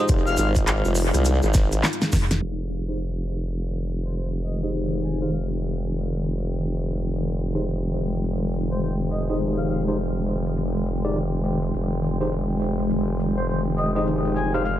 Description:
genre	glitch hop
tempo	103 BPM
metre	4/4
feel	swing 61% on 16ths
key	F dorian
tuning	A4 = 438 Hz
part	mellow harmonica	melody	0.0-0.5, 4.1-9.8, 13.4-14.8 s	C5 to Ab5	-31 LUFS	left 2 dB	vintage 12-bit sampler grit, analog delay
part	dark analog pad	sustained chords	0.0-14.8 s	Ab3 to G5	-33 LUFS	left 1 dB	none
part	bell-like tine electric piano	stabs	0.0-14.6 s	Eb4 to D5	-29 LUFS	equal	medium stereo tremolo, vintage 12-bit sampler grit, sidechain pumping, analog delay
part	granular cloud pad	texture	0.0-14.8 s	Eb3 to G5	-29 LUFS	left 1 dB	built-in reverb, sidechain pumping
part	formant-sweep wobble bass	bass	0.1-14.8 s	F1 to C2	-25 LUFS	equal	chorus
part	electronic kick drum	drums	0.1-2.3 s	none	-21 LUFS	equal	none
part	pop drum kit	drums	0.1-14.8 s	crash cymbal, handclaps, hi-hat, rim click, snare drum	-26 LUFS	equal	analog delay
part	tube shaker	percussion	0.1-14.8 s	none	-35 LUFS	right 3 dB	analog delay
part	slap-like FM bass	bass	2.1-2.4 s	F1	-23 LUFS	equal	none
room	digital ambience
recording	echo-heavy mix, low-pass filter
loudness	-22 LUFS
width	side -12 dB against mid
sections	0.0-2.4 A section; 2.4-14.8 B section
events	drum fill 1.5-2.4; filter sweep 2.4-14.8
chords	0.0 Fm9

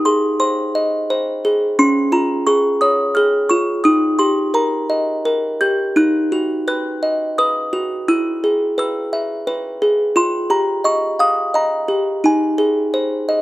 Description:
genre	children's music, lullaby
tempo	86 BPM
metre	3/4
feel	rubato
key	Ab major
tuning	A4 = 442 Hz
part	music box	solo	0.0-13.4 s	Db4 to G6	-15 LUFS	equal	none
room	little or no reverb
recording	close, detailed microphones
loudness	-15 LUFS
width	side -17 dB against mid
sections	0.0-13.4 A section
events	none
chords	0.0 Ab/Eb; 1.8 Db; 3.8 Eb; 6.0 B; 8.1 E; 10.2 Ebadd9; 12.2 Ab

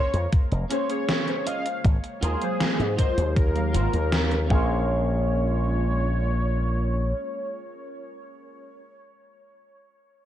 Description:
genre	vaporwave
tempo	79 BPM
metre	4/4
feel	straight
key	Bb minor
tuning	A4 = 440 Hz
part	warm velvety synth lead	melody	0.0-8.7 s	Ab4 to F5	-30 LUFS	left 1 dB	chorus, tape echo
part	warbly tape-like pad	sustained chords	0.0-8.7 s	C3 to F5	-38 LUFS	equal	chorus, built-in reverb
part	electric guitar at the edge of break-up	riff	0.0-8.9 s	Db4 to Eb5	-36 LUFS	right 3 dB	ensemble chorus, tape echo
part	slap bass with an envelope filter	bass	0.1-7.1 s	F1 to Ab2	-24 LUFS	equal	none
part	gated 80s digital drum machine	drums	0.1-4.5 s	hi-hat, snare drum	-28 LUFS	equal	gated reverb, gated reverb snare, overdrive
part	electronic kick drum	drums	0.3-4.7 s	none	-21 LUFS	equal	overdrive
part	warbly lo-fi synth keys	accompaniment	0.7-8.8 s	Gb3 to F5	-33 LUFS	equal	wide subtle chorus, tape echo
room	digital ambience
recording	cassette tape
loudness	-22 LUFS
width	side -11 dB against mid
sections	0.0-4.9 A section; 4.9-7.9 B section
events	none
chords	0.0 Bbm9; 1.8 Ab13; 4.5 Bbm9

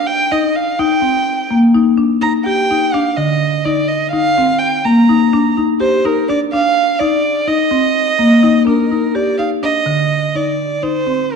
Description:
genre	contemporary instrumental, chamber music in an uneven meter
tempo	251 BPM (eighths)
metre	7/8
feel	straight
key	Eb major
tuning	A4 = 440 Hz
part	dark violin	melody	0.0-11.4 s	Bb4 to Bb5	-16 LUFS	right 3 dB	none
part	marimba with medium hard mallets	arpeggios	0.0-11.3 s	D3 to G4	-14 LUFS	left 2 dB	none
room	wet recital hall reverb, RT60 1.4 s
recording	dark, warm production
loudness	-12 LUFS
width	side -5 dB against mid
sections	0.0-9.2 A section; 9.2-11.4 B section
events	none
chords	0.0 Ebmaj7(no3)

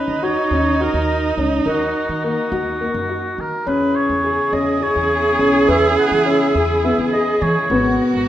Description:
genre	contemporary instrumental, chamber music in an uneven meter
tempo	209 BPM (eighths)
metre	7/8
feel	straight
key	C# dorian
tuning	A4 = 443 Hz
part	warm oboe	melody	0.0-8.0 s	F#4 to F#5	-22 LUFS	equal	none
part	rich cello	second line	0.0-8.3 s	D#4 to G#4	-20 LUFS	right 4 dB	none
part	dark concert grand piano	arpeggios	0.0-8.2 s	A#3 to B4	-20 LUFS	left 2 dB	none
part	upright bass	bass	0.1-8.3 s	G#1 to E3	-26 LUFS	right 1 dB	none
part	warm symphonic string section	sustained chords	3.7-8.3 s	B2 to A#4	-26 LUFS	left 2 dB	none
room	wet recital hall reverb, RT60 1.6 s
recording	none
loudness	-15 LUFS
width	side -12 dB against mid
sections	0.0-8.3 A section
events	none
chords	0.0 D#m7; 3.7 C#m7; 7.7 G#m9

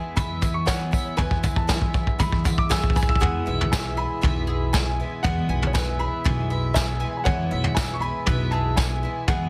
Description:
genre	indie folk with a building arrangement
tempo	119 BPM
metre	4/4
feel	straight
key	E major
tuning	A4 = 439 Hz
part	dark upright piano	melody	0.0-9.5 s	F#5 to E6	-32 LUFS	equal	none
part	open-back banjo	second line	0.0-9.5 s	G#4 to E5	-36 LUFS	equal	tape echo
part	felt-muted upright piano	accompaniment	0.0-9.5 s	E2 to F#5	-42 LUFS	equal	none
part	fingerpicked steel-string acoustic guitar	accompaniment	0.0-1.2 s	E2 to B3	-43 LUFS	equal	none
part	picked twelve-string acoustic guitar	accompaniment	0.0-9.5 s	E2 to E4	-38 LUFS	equal	none
part	mandolin	arpeggios	0.0-9.5 s	G#4 to G#5	-36 LUFS	equal	tape echo
part	upright bass	bass	0.2-9.5 s	B1 to E3	-30 LUFS	equal	none
part	vintage brush drum kit	drums	0.2-9.4 s	kick drum, snare drum, toms	-26 LUFS	equal	none
part	tambourine	percussion	0.2-8.9 s	none	-41 LUFS	equal	none
part	pedal harmonium	sustained chords	3.2-9.5 s	E3 to E5	-40 LUFS	equal	none
room	small room ambience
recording	dense, heavily limited modern master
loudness	-23 LUFS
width	mono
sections	0.0-3.2 A section; 3.2-9.5 B section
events	build-up 0.0-3.2; drum fill 0.0-3.2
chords	0.0 E

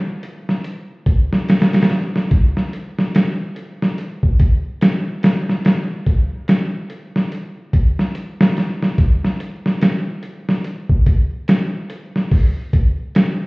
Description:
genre	trip hop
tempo	72 BPM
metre	4/4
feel	swing 59% on 16ths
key	none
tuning	none
part	boom bap sampler-style drum kit	drums	0.2-13.4 s	hi-hat, kick drum, snare drum	-15 LUFS	equal	none
room	moderate echo chamber reverb, RT60 2.5 s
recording	heard muffled through a wall, stone room reverb, EQ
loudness	-15 LUFS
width	side -26 dB against mid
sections	0.0-13.5 A section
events	none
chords	none

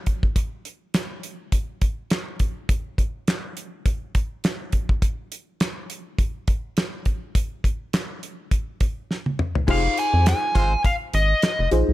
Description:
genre	early-eighties boogie funk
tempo	103 BPM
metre	4/4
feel	swing 56% on 16ths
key	unclear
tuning	A4 = 440 Hz
part	damped 70s drum kit	drums	0.1-11.9 s	crash cymbal, handclaps, hi-hat, kick drum, snare drum, toms	-22 LUFS	equal	none
part	nasal lead guitar with a parked wah	melody	9.7-11.7 s	Eb5 to Ab5	-22 LUFS	equal	overdrive, slapback echo
part	clear horn section	second line	9.7-10.7 s	Ab3 to C5	-32 LUFS	right 1 dB	none
part	FM electric piano with soft pad layer	accompaniment	9.7-11.9 s	Eb4 to C5	-25 LUFS	left 3 dB	chorus, phaser
part	rubbery square bass	bass	9.7-11.9 s	F1 to F2	-20 LUFS	equal	none
room	small room ambience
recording	none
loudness	-21 LUFS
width	side -16 dB against mid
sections	0.0-9.7 A section; 9.7-11.9 B section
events	drum fill 9.1-9.7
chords	0.0 N.C.; 9.7 Fm7

